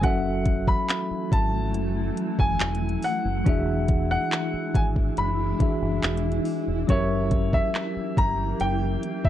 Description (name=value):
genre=contemporary R&B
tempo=70 BPM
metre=4/4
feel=straight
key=F# minor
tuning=A4 = 439 Hz
part: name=warm concert grand piano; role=melody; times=0.0-9.3 s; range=C#5 to B5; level=-29 LUFS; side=left 1 dB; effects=none
part: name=bell-like tine electric piano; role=accompaniment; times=0.0-9.3 s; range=E3 to E5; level=-28 LUFS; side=left 1 dB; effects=medium stereo tremolo
part: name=granular cloud pad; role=sustained chords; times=0.9-9.3 s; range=E3 to G4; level=-32 LUFS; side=equal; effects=built-in reverb
part: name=deep dub fingered electric bass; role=bass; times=0.0-9.3 s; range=E1 to G#1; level=-28 LUFS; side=equal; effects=none
part: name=smooth R&B drum kit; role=drums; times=0.0-9.3 s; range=handclaps, hi-hat, kick drum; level=-23 LUFS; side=equal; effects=none
room=light reverb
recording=cassette tape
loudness=-22 LUFS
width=side -12 dB against mid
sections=0.0-9.3 A section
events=none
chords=0.0 F#m9; 3.5 E9; 6.9 F#7b9